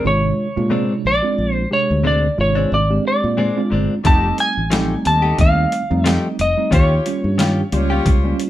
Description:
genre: straight-eighth soul blues.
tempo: 90 BPM.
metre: 4/4.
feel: swing 56% on 16ths.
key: unclear.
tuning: A4 = 440 Hz.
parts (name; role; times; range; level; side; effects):
clean lap steel guitar; melody; 0.0-8.5 s; Db5 to A5; -19 LUFS; equal; none.
mellow tine electric piano; accompaniment; 0.0-8.5 s; C3 to G4; -22 LUFS; right 3 dB; medium stereo tremolo.
direct-recorded clean electric guitar; stabs; 0.0-8.1 s; Bb2 to G4; -22 LUFS; left 3 dB; none.
fingered electric bass; bass; 0.1-8.3 s; F1 to Bb2; -19 LUFS; equal; none.
warm horn section; sustained chords; 4.0-8.4 s; F4 to Eb5; -28 LUFS; left 2 dB; none.
boom bap sampler-style drum kit; drums; 4.0-8.5 s; hi-hat, kick drum, snare drum; -17 LUFS; equal; none.
room: moderate studio reverb, RT60 0.6 s.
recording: band playing live in one room.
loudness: -15 LUFS.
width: side -13 dB against mid.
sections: 0.0-8.5 A section.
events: none.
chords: 0.0 Bb9; 4.1 F9; 6.7 Eb9.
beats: 0.05 0.71 | 1.38 2.05 2.72 3.38 | 4.05 4.72 5.39 6.05 | 6.72 7.39 8.06.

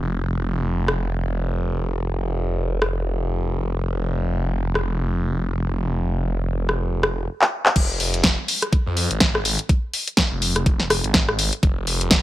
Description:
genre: bass house.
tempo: 124 BPM.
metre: 4/4.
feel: swing 58% on 16ths.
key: F minor.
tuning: A4 = 440 Hz.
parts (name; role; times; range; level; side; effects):
phased detuned saw bass; bass; 0.0-12.2 s; F1 to F2; -23 LUFS; equal; phaser, overdrive, sidechain pumping.
house drum kit; drums; 0.9-12.2 s; crash cymbal, handclaps, hi-hat, rim click, snare drum; -19 LUFS; equal; none.
electronic kick drum; drums; 7.8-12.2 s; none; -19 LUFS; equal; overdrive.
room: little or no reverb.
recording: none.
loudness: -19 LUFS.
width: side -14 dB against mid.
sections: 0.0-7.8 A section; 7.8-12.2 B section.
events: drum fill 7.4-7.8; drop 7.8-12.2.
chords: none.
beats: | 0.02 0.50 0.98 1.47 | 1.95 2.44 2.92 3.40 | 3.89 4.37 4.86 5.34 | 5.82 6.31 6.79 7.28 | 7.76 8.24 8.73 9.21 | 9.69 10.18 10.66 11.15 | 11.63 12.11.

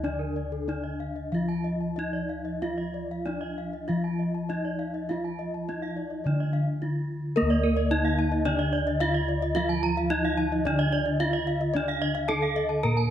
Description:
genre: Balinese gamelan.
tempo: 93-110 BPM.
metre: 4/4.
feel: straight.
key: D pelog.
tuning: A4 = 440 Hz.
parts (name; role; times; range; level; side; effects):
gamelan-type bronze metallophone; melody; 0.0-13.1 s; Bb3-20c to Bb4-20c; -30 LUFS; equal; none.
gamelan-type bronze metallophone; accompaniment; 0.0-13.1 s; D3 to Bb3-20c; -33 LUFS; right 1 dB; none.
gamelan-type bronze metallophone; arpeggios; 0.0-13.0 s; A4-30c to Bb5-20c; -34 LUFS; left 4 dB; none.
gamelan-type bossed gongs; bass; 0.0-13.1 s; D2 to Bb4-20c; -30 LUFS; left 1 dB; none.
gamelan-type bronze metallophone; arpeggios; 0.2-13.1 s; Bb4-20c to Bb5-20c; -34 LUFS; right 5 dB; none.
room: moderate recital hall reverb, RT60 1.3 s.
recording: dark, warm production.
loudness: -25 LUFS.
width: side -10 dB against mid.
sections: 0.0-7.4 A section; 7.4-13.1 B section.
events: none.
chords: none.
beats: | 0.04 0.69 1.33 1.98 | 2.62 3.26 3.89 4.50 | 5.09 5.68 6.25 6.82 | 7.37 7.92 8.46 9.01 | 9.56 10.10 10.65 11.20 | 11.74 12.29 12.84.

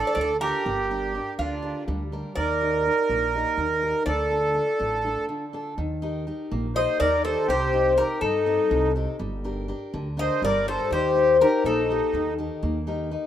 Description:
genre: greek folk, Greek bouzouki band.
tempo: 245 BPM (eighths).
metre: 7/8.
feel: straight.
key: unclear.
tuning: A4 = 439 Hz.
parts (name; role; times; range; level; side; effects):
Greek bouzouki; melody; 0.0-12.3 s; F4 to Eb5; -24 LUFS; left 4 dB; none.
accordion; second line; 0.0-12.3 s; D4 to C5; -26 LUFS; right 4 dB; none.
picked steel-string acoustic guitar; accompaniment; 0.0-13.3 s; C3 to Bb4; -31 LUFS; left 1 dB; none.
upright bass; bass; 0.2-13.1 s; G1 to G2; -31 LUFS; right 1 dB; none.
room: light reverb, small room reverb.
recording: rough home demo mix.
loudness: -22 LUFS.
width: side -10 dB against mid.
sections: 0.0-5.8 A section; 5.8-13.3 B section.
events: break 5.3-5.8.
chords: 0.0 Dm; 0.7 Gm; 2.4 Eb; 4.1 Dm; 5.8 Eb; 7.5 Cm; 9.2 Gm; 10.9 Eb.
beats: 0.16 0.41 | 0.65 0.89 1.14 1.38 1.62 1.87 2.11 | 2.36 2.60 2.85 3.09 3.33 3.58 3.82 | 4.07 4.31 4.55 4.80 5.04 5.29 5.53 | 5.78 6.02 6.27 6.51 6.75 7.00 7.24 | 7.49 7.73 7.98 8.22 8.47 8.71 8.96 | 9.20 9.45 9.69 9.94 10.18 10.42 10.67 | 10.91 11.16 11.40 11.65 11.89 12.14 12.38 | 12.63 12.87 13.12.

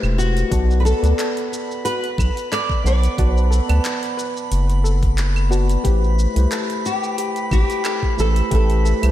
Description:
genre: sunset chillout.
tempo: 90 BPM.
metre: 4/4.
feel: swing 54% on 16ths.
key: unclear.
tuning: A4 = 440 Hz.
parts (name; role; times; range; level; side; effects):
nylon-string guitar; melody; 0.0-9.1 s; F#4 to D5; -24 LUFS; left 1 dB; lush chorus, analog delay, shimmer reverb.
tine electric piano; accompaniment; 0.0-9.1 s; A3 to A5; -26 LUFS; moving between left 7 dB and right 6 dB; auto-pan, tape echo, shimmer reverb.
round analog bass; bass; 0.0-9.1 s; E1 to D2; -16 LUFS; equal; none.
smooth R&B drum kit; drums; 0.0-9.1 s; claves, handclaps, hi-hat, shaker; -30 LUFS; right 1 dB; small room ambience.
soft round pluck; arpeggios; 0.5-9.0 s; F#4 to B4; -31 LUFS; left 2 dB; wide subtle chorus, tape echo, shimmer reverb.
electronic kick drum; drums; 0.5-8.7 s; none; -20 LUFS; equal; small room ambience.
drifting glass-harmonics texture; texture; 1.1-9.1 s; B5; -30 LUFS; right 1 dB; chorus, built-in reverb, shimmer reverb.
room: light reverb.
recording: none.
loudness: -16 LUFS.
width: side -13 dB against mid.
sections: 0.0-9.1 A section.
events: none.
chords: 0.0 Am9; 0.5 Bm7; 5.8 Am9.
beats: | 0.52 1.18 1.85 2.52 | 3.18 3.85 4.52 5.18 | 5.85 6.52 7.18 7.85 | 8.52.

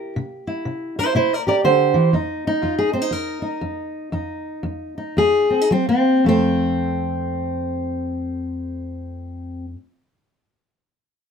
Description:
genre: acoustic country blues, solo or duo.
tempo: 109-122 BPM.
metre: 4/4.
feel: swing 62% on 8ths.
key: F mixolydian.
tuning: A4 = 440 Hz.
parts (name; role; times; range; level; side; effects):
fingerpicked steel-string acoustic guitar; solo; 0.0-9.8 s; F2 to D5; -19 LUFS; equal; none.
room: moderate studio reverb, RT60 0.6 s.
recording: minimal, uncompressed stereo recording.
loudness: -18 LUFS.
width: side -6 dB against mid.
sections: 0.0-6.2 A section; 6.2-10.6 B section.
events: slowing down 2.1-6.2; stop 2.1-5.7.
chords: 0.0 C7; 2.1 F5; 5.7 N.C.; 6.2 F.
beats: | 0.16 0.65 1.14 1.63 | 2.13 2.62 3.11 3.61 | 4.12 4.63 5.16 5.69 | 6.24 6.79 7.34 7.89 | 8.44 8.99 9.54.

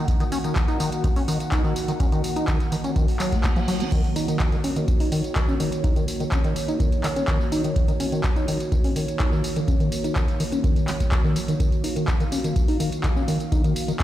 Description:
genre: acid house.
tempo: 125 BPM.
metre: 4/4.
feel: straight.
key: Eb minor.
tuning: A4 = 440 Hz.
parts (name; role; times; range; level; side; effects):
dark analog pad; sustained chords; 0.0-14.0 s; Eb3 to Gb5; -28 LUFS; right 1 dB; chorus, phaser, sidechain pumping.
liquid acid bass; riff; 0.0-14.0 s; Eb3 to Eb4; -26 LUFS; left 1 dB; chorus, digital delay.
booming analog drum machine; drums; 0.1-14.0 s; crash cymbal, handclaps, hi-hat, tambourine; -32 LUFS; equal; none.
electronic kick drum; drums; 0.1-14.0 s; none; -23 LUFS; equal; none.
reverse cymbal; sound effects; 3.2-3.9 s; none; -39 LUFS; right 6 dB; none.
room: light reverb.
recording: played on a big sound system in a bare room, large studio reverb.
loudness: -20 LUFS.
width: side -13 dB against mid.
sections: 0.0-14.0 A section.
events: reverse cymbal 3.2-3.9.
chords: 0.0 Ebm7.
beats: | 0.08 0.56 1.04 1.52 | 2.00 2.48 2.96 3.44 | 3.92 4.40 4.88 5.36 | 5.84 6.32 6.80 7.28 | 7.76 8.24 8.72 9.20 | 9.68 10.16 10.64 11.12 | 11.60 12.08 12.56 13.04 | 13.52 14.00.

